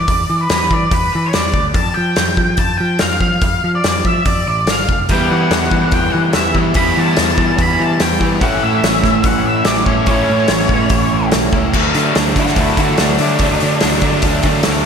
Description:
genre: indie rock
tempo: 144 BPM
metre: 4/4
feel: straight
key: D major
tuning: A4 = 441 Hz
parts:
  - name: octave-fuzz lead guitar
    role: melody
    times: 0.0-14.2 s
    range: D4 to B5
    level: -18 LUFS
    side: left 1 dB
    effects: distortion, ping-pong delay
  - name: growling picked electric bass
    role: bass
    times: 0.0-14.8 s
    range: F1 to F3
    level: -20 LUFS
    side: equal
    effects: overdrive
  - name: loose indie drum kit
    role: drums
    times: 0.1-14.7 s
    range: crash cymbal, hi-hat, kick drum, snare drum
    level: -17 LUFS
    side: equal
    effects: none
  - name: overdriven electric guitar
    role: riff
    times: 5.1-14.9 s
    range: A2 to E4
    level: -19 LUFS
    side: right 6 dB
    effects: wide subtle chorus
  - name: raw garage guitar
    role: riff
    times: 5.1-14.9 s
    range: A2 to E4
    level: -20 LUFS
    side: left 6 dB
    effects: overdrive, analog chorus
room: moderate lush hall reverb, RT60 1.8 s, studio reverb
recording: dreamy mix soaked in reverb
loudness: -12 LUFS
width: side -7 dB against mid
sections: 0.0-11.7 A section; 11.7-14.9 B section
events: none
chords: 0.0 Dsus2; 1.8 Fsus2; 5.1 Em; 8.4 A; 11.7 D

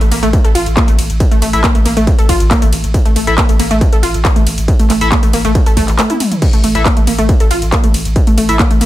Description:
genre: driving peak-time techno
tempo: 138 BPM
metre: 4/4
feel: straight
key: unclear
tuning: A4 = 438 Hz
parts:
  - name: wide unison pluck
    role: riff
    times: 0.0-8.8 s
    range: A3 to A4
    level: -16 LUFS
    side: equal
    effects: tube saturation, cassette tape, sidechain pumping, ping-pong delay
  - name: saturated sub bass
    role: bass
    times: 0.0-8.9 s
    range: A1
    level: -17 LUFS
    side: equal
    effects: overdrive, sidechain pumping, low-pass filter
  - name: techno drum kit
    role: drums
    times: 0.0-8.9 s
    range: crash cymbal, handclaps, hi-hat, ride cymbal, toms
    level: -19 LUFS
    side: equal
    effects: sidechain pumping on hats, sidechain pumping on cymbals, sidechain pumping on toms
  - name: electronic kick drum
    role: drums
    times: 0.3-8.7 s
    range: none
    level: -12 LUFS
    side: equal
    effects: distortion
  - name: sync-sweep polysynth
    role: stabs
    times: 1.5-8.6 s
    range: E4 to E5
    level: -19 LUFS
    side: left 2 dB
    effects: chorus, sidechain pumping, ping-pong delay
room: little or no reverb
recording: none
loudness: -9 LUFS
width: side -15 dB against mid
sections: 0.0-8.9 A section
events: break 6.0-6.4; drum fill 6.1-6.4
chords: 0.0 A5

